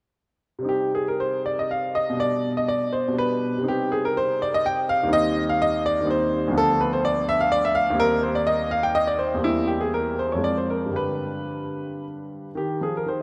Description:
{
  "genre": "classical, baroque-style suite movement for grand piano",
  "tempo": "110-129 BPM",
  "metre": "3/4",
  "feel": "rubato",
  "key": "C minor",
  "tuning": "A4 = 440 Hz",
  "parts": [
    { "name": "clear grand piano", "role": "solo", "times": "0.6-13.2 s", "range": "D2 to G5", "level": "-23 LUFS", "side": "equal", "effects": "none" }
  ],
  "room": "wet church reverb, RT60 3.2 s",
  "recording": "dark, warm production",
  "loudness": "-23 LUFS",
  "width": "mono",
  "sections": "0.7-12.6 A section",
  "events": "none",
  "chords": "0.7 Cm; 2.2 G/B; 3.7 Cm; 5.1 Cm/Eb; 6.5 Bdim/D; 8.0 Cm/Eb; 9.4 C7/E; 10.4 Fm; 10.9 G; 12.6 Cm/Eb"
}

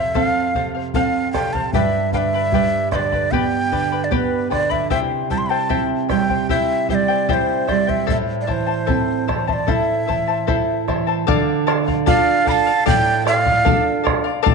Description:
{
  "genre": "andean folk, Andean ensemble",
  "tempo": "76 BPM",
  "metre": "4/4",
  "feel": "straight",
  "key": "unclear",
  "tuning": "A4 = 443 Hz",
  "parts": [
    { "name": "breathy bright large quena", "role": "melody", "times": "0.0-14.0 s", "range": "B4 to C6", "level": "-20 LUFS", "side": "right 1 dB", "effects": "none" },
    { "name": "charango", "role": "accompaniment", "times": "0.0-14.5 s", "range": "E4 to B5", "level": "-23 LUFS", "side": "left 12 dB", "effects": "none" },
    { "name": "nylon-string guitar", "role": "accompaniment", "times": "0.0-14.5 s", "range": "F2 to A4", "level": "-22 LUFS", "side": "right 10 dB", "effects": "none" },
    { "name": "bombo", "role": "percussion", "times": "0.2-14.5 s", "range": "none", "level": "-23 LUFS", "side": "left 3 dB", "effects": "none" },
    { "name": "breathy mellow pan flute", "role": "second line", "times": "12.1-14.0 s", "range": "D5 to F5", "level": "-24 LUFS", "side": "right 11 dB", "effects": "none" }
  ],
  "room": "moderate plate reverb, RT60 2.4 s",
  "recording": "1960s-style stereo with parts hard left and right, nothing above 10.8 kHz",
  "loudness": "-16 LUFS",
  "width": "side -4 dB against mid",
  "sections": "0.0-11.3 A section; 11.3-14.5 B section",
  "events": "none",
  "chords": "0.0 F; 1.7 G; 4.9 C; 8.1 Am; 11.3 Dm"
}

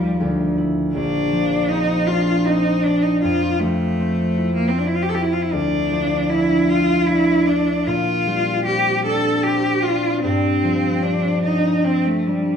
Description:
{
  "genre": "classical, impressionist duo for cello and harp",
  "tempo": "77 BPM",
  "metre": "3/4",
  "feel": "uneven beats, rubato",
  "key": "unclear",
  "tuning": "A4 = 440 Hz",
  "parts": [
    { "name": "rich cello", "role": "melody", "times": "0.0-12.6 s", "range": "G3 to A4", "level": "-20 LUFS", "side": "equal", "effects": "none" },
    { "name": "concert harp", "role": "accompaniment", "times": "0.0-12.6 s", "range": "Bb1 to F4", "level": "-19 LUFS", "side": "equal", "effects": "none" }
  ],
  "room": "moderate stone room reverb, RT60 1.5 s",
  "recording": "none",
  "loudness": "-17 LUFS",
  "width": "side -7 dB against mid",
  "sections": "0.0-12.6 A section",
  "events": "none",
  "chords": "0.2 Dmadd9; 0.9 Bbadd9; 3.2 Fmaj7; 5.5 Dmadd9; 7.9 Bb69; 10.2 G7sus4"
}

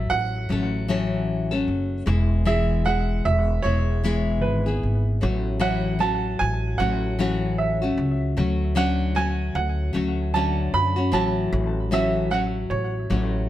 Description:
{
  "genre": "acoustic pop",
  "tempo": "76 BPM",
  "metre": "4/4",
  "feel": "swing 60% on 16ths",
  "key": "A major",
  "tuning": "A4 = 439 Hz",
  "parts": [
    { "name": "clear upright piano", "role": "melody", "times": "0.0-13.5 s", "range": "B4 to B5", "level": "-27 LUFS", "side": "right 5 dB", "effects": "plate reverb, ping-pong delay" },
    { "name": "nylon-string guitar", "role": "accompaniment", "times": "0.0-13.5 s", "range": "A2 to A4", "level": "-25 LUFS", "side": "left 3 dB", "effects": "none" },
    { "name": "upright bass", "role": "bass", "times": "0.0-13.5 s", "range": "E1 to F#2", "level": "-24 LUFS", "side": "equal", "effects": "none" }
  ],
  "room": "light reverb",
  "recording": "none",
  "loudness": "-21 LUFS",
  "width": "side -13 dB against mid",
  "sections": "0.0-13.5 A section",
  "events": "none",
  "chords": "0.0 A6; 2.1 E; 5.2 A6; 8.4 Dmaj7; 11.1 A6"
}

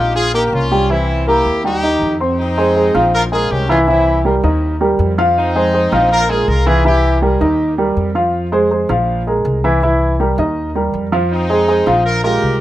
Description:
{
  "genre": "latin, salsa",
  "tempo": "161 BPM",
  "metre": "4/4",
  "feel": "straight",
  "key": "F minor",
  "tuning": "A4 = 440 Hz",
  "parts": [
    { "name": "bright horn section", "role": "melody", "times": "0.0-7.2, 11.3-12.6 s", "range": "C4 to Bb4", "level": "-19 LUFS", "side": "left 1 dB", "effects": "analog delay" },
    { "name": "dark baby grand piano", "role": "accompaniment", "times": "0.0-12.5 s", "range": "Eb3 to F6", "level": "-14 LUFS", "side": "right 1 dB", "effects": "none" },
    { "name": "upright bass", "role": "bass", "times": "0.0-12.6 s", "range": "Bb1 to F2", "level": "-19 LUFS", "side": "equal", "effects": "none" }
  ],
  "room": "moderate studio ambience, RT60 0.5 s",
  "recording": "rough home demo mix",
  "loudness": "-12 LUFS",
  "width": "side -14 dB against mid",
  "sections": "0.0-2.4 A section; 2.4-12.6 B section",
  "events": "none",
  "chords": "0.2 Bbm; 0.9 C7; 1.6 Eb; 2.4 Fm7; 3.1 Bbm7; 3.9 C7; 4.6 Eb; 5.4 Fm7; 6.1 Bb5; 6.8 C7; 7.6 Eb; 8.3 Fm; 9.1 Bb5; 9.8 C7; 10.6 Eb; 11.3 Fm7"
}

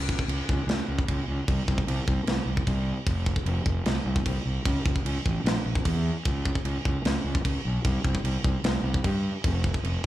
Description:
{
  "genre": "heavy metal",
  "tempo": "151 BPM",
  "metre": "4/4",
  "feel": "straight",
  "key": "unclear",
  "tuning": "A4 = 440 Hz",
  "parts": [
    { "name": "fuzz fingered electric bass", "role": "bass", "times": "0.0-10.0 s", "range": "F1 to G2", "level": "-27 LUFS", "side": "equal", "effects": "overdrive" },
    { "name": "tight metal drum kit", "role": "drums", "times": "0.1-9.9 s", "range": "crash cymbal, kick drum, snare drum", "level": "-27 LUFS", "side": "equal", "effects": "none" }
  ],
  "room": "little or no reverb",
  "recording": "small room ambience",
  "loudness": "-24 LUFS",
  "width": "side -14 dB against mid",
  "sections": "0.0-10.1 A section",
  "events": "none",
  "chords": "none"
}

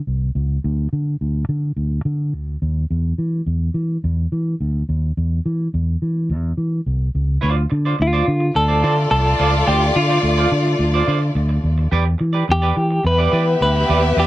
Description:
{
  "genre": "disco",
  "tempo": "106 BPM",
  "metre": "4/4",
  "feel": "straight",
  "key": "D dorian",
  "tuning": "A4 = 440 Hz",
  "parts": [
    { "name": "fingered electric bass", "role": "bass", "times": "0.1-14.3 s", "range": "C2 to E3", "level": "-18 LUFS", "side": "equal", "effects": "none" },
    { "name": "semi-hollow electric guitar", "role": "accompaniment", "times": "7.4-14.3 s", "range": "F4 to D5", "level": "-23 LUFS", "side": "right 5 dB", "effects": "none" },
    { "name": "clean electric guitar", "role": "melody", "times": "8.0-14.3 s", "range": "F4 to B4", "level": "-19 LUFS", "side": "equal", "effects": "tremolo" },
    { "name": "warm studio violin section", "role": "second line", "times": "8.5-14.3 s", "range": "A3 to E5", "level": "-22 LUFS", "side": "left 2 dB", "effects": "none" }
  ],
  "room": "little or no reverb",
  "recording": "dry, close 1970s-style studio recording",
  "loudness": "-16 LUFS",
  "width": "side -16 dB against mid",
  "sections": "0.0-7.4 A section; 7.4-14.3 B section",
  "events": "none",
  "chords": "0.0 N.C.; 7.4 Dm7; 11.9 Em7"
}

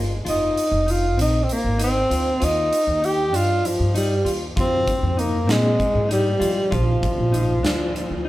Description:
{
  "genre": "progressive instrumental, band music in an uneven meter",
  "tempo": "195 BPM (eighths)",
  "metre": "7/8",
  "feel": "straight",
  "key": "F dorian",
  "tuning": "A4 = 440 Hz",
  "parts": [
    { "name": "mellow electric guitar", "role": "arpeggios", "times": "0.0-8.3 s", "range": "C4 to F4", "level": "-29 LUFS", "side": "left 4 dB", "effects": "none" },
    { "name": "upright bass", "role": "bass", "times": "0.0-8.2 s", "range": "F1 to F3", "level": "-23 LUFS", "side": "equal", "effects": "none" },
    { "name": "breathy tenor saxophone", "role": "melody", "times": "0.3-8.3 s", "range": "F3 to G4", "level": "-21 LUFS", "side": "equal", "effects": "tape echo" },
    { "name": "vibraphone with medium hard mallets", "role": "second line", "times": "0.3-8.3 s", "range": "F4 to G5", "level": "-30 LUFS", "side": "right 4 dB", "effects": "none" },
    { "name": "huge arena drum kit", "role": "drums", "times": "0.3-8.1 s", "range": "hi-hat, kick drum, snare drum", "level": "-28 LUFS", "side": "equal", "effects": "none" }
  ],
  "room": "light reverb",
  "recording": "band playing live in one room",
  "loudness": "-18 LUFS",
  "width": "side -16 dB against mid",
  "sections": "0.0-8.3 A section",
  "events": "none",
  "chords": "0.3 Fm7; 2.4 Eb; 4.6 Fm7; 6.7 Bb"
}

